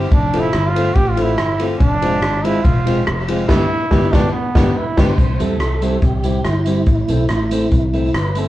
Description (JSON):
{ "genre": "ska", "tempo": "142 BPM", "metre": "4/4", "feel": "straight", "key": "C major", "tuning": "A4 = 438 Hz", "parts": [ { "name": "clean electric guitar", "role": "accompaniment", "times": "0.0-8.5 s", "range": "G3 to G4", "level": "-24 LUFS", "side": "right 2 dB", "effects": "none" }, { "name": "dark upright piano", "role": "stabs", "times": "0.0-8.5 s", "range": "D4 to C5", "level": "-24 LUFS", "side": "left 3 dB", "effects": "none" }, { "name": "fingered electric bass", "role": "bass", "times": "0.0-8.5 s", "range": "E1 to C2", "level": "-20 LUFS", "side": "equal", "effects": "none" }, { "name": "brilliant trombone", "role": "melody", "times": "0.1-5.0 s", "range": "B3 to G4", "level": "-20 LUFS", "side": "right 2 dB", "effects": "none" }, { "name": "swinging big-band drum kit", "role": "drums", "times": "0.1-8.4 s", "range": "crash cymbal, hi-hat, kick drum, ride cymbal, rim click, snare drum", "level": "-18 LUFS", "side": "equal", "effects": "vintage 12-bit sampler grit" }, { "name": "mellow tonewheel organ", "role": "melody", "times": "4.8-8.5 s", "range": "E4 to C5", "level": "-22 LUFS", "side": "right 1 dB", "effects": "chorus vibrato, fast rotary speaker" } ], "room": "moderate large studio reverb, RT60 0.9 s", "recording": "band playing live in one room, cassette tape", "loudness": "-14 LUFS", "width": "side -15 dB against mid", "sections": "0.0-5.2 A section; 5.2-8.5 B section", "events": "trombone solo 0.0-5.2; band accent 3.5-5.2", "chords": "0.1 F; 1.8 Fm; 3.5 G; 5.2 C; 6.9 Am", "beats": "| 0.12 0.54 0.96 1.39 | 1.81 2.23 2.65 3.07 | 3.49 3.92 4.34 4.76 | 5.18 5.60 6.03 6.45 | 6.87 7.29 7.72 8.14" }